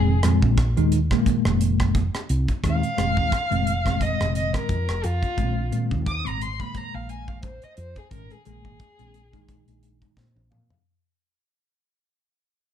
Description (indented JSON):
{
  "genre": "electric jazz fusion",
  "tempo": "88 BPM",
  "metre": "4/4",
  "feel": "swing 56% on 16ths",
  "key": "unclear",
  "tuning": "A4 = 441 Hz",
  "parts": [
    { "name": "dark violin", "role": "melody", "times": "0.0-9.8 s", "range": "F4 to Eb6", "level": "-29 LUFS", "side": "left 1 dB", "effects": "none" },
    { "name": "bell-like tine electric piano", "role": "accompaniment", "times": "0.0-10.8 s", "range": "Bb2 to F5", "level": "-25 LUFS", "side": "equal", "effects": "fast stereo tremolo" },
    { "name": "woody fretless electric bass", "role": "bass", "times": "0.0-10.7 s", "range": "F1 to Bb2", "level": "-24 LUFS", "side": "equal", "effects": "none" },
    { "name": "tight funk drum kit", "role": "drums", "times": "0.2-10.8 s", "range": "hi-hat, kick drum, rim click, snare drum, toms", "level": "-27 LUFS", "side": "equal", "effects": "none" }
  ],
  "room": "light reverb",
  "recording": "dark, warm production",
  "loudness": "-20 LUFS",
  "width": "side -9 dB against mid",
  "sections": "0.0-10.9 A section",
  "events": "fade-out 0.0-10.9; violin solo 0.0-10.9; tine electric piano fill 9.8-10.9; drum fill 10.2-10.9",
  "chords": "0.0 Fm7; 5.4 Bb7sus2"
}